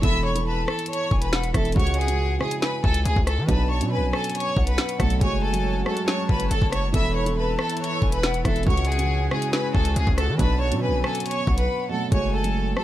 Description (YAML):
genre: hip hop, drill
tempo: 139 BPM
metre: 4/4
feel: half-time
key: F# minor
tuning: A4 = 440 Hz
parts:
  - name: warm studio violin section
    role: melody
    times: 0.0-12.8 s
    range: G#4 to E6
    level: -28 LUFS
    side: left 1 dB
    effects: tape echo
  - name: breathy concert flute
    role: second line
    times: 0.0-12.8 s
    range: E5 to B5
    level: -32 LUFS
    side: left 4 dB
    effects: tape echo
  - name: felt-muted upright piano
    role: accompaniment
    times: 0.0-12.8 s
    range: B2 to A4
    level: -28 LUFS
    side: right 4 dB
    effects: none
  - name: distorted 808-style bass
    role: bass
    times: 0.0-12.7 s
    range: E1 to E3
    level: -24 LUFS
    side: equal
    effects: distortion
  - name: drill drum kit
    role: drums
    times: 0.0-12.8 s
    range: hi-hat, kick drum, rim click, snare drum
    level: -24 LUFS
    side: equal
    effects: overdrive
  - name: warm analog pad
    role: sustained chords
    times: 5.2-12.1 s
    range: C#3 to C#5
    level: -34 LUFS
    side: left 1 dB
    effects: chorus
room: studio ambience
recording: dark, warm production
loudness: -20 LUFS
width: side -13 dB against mid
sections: 0.0-12.1 A section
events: break 11.7-12.1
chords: 0.0 Esus4; 1.8 C#sus4; 3.5 Bm; 5.2 F#madd9; 6.9 Esus4; 8.7 C#sus4; 10.4 Bm; 12.1 F#madd9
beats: | 0.03 0.47 0.90 1.33 | 1.76 2.19 2.62 3.06 | 3.49 3.92 4.35 4.78 | 5.21 5.64 6.08 6.51 | 6.94 7.37 7.80 8.23 | 8.67 9.10 9.53 9.96 | 10.39 10.82 11.26 11.69 | 12.12 12.55